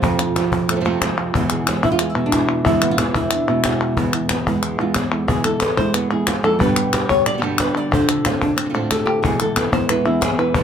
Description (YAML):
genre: flamenco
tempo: 182 BPM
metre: 4/4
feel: straight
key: E phrygian dominant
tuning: A4 = 439 Hz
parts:
  - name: flamenco guitar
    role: melody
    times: 0.0-10.6 s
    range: E2 to D5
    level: -19 LUFS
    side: equal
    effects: none
  - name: flamenco guitar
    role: stabs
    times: 0.0-10.6 s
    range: E2 to G4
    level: -26 LUFS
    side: right 5 dB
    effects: none
  - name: cajon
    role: percussion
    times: 0.0-10.6 s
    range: none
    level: -24 LUFS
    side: left 2 dB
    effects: none
  - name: palmas hand claps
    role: percussion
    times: 0.0-10.6 s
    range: none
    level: -23 LUFS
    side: left 3 dB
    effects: none
room: light reverb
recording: close, detailed microphones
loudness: -16 LUFS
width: side -8 dB against mid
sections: 0.0-4.0 A section; 4.0-10.6 B section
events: nylon-string guitar solo 4.0-10.6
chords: 0.0 F; 1.3 E; 6.6 G; 7.9 Dm7; 9.2 E